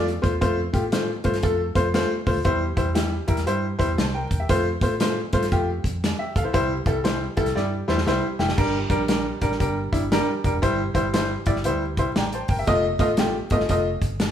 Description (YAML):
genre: uptempo 1960s-style soul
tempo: 118 BPM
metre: 4/4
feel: swing 63% on 8ths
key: C mixolydian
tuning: A4 = 440 Hz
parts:
  - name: bright upright piano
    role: accompaniment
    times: 0.0-13.9 s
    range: G3 to C6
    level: -23 LUFS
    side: left 1 dB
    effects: none
  - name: vintage muted fingered electric bass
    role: bass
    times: 0.0-14.3 s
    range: F1 to A2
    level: -29 LUFS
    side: equal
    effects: none
  - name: natural country drum kit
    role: drums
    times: 0.1-14.3 s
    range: crash cymbal, hi-hat, kick drum, snare drum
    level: -25 LUFS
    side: equal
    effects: none
room: wet large studio reverb, RT60 1.0 s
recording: band playing live in one room, vinyl crackle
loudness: -20 LUFS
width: side -9 dB against mid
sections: 0.0-8.6 A section; 8.6-14.3 B section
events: drum fill 7.6-8.6; upright piano fill 11.7-12.7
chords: 0.0 F; 2.5 C/E; 4.5 F; 6.5 C; 8.6 Gm; 10.6 C/G; 12.7 F7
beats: | 0.42 0.93 1.44 1.95 | 2.46 2.97 3.48 3.99 | 4.50 5.01 5.52 6.03 | 6.54 7.05 7.56 8.07 | 8.58 9.09 9.61 10.12 | 10.63 11.14 11.65 12.16 | 12.67 13.18 13.70 14.21